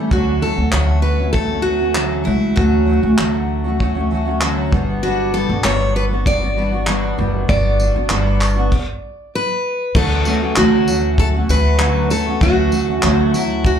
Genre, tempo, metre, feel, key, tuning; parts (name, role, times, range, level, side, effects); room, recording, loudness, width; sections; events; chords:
acoustic pop; 98 BPM; 4/4; straight; D major; A4 = 440 Hz
fingerpicked steel-string acoustic guitar; accompaniment; 0.0-13.8 s; D3 to A4; -20 LUFS; equal; double-tracked left and right, plate reverb, slapback echo
picked steel-string acoustic guitar; melody; 0.1-13.8 s; E4 to D5; -20 LUFS; equal; plate reverb, slapback echo, digital delay
upright bass; bass; 0.1-13.8 s; F#1 to D2; -18 LUFS; equal
cloth-damped thuddy drum kit; drums; 0.1-13.8 s; crash cymbal, handclaps, kick drum, tambourine; -19 LUFS; equal
light reverb; live gig heard through the venue's PA, club reverb; -14 LUFS; side -8 dB against mid
0.1-10.0 A section; 10.0-13.8 B section
stop 8.7-10.0
0.1 Dmaj7; 4.7 Gmaj7; 10.0 Dmaj7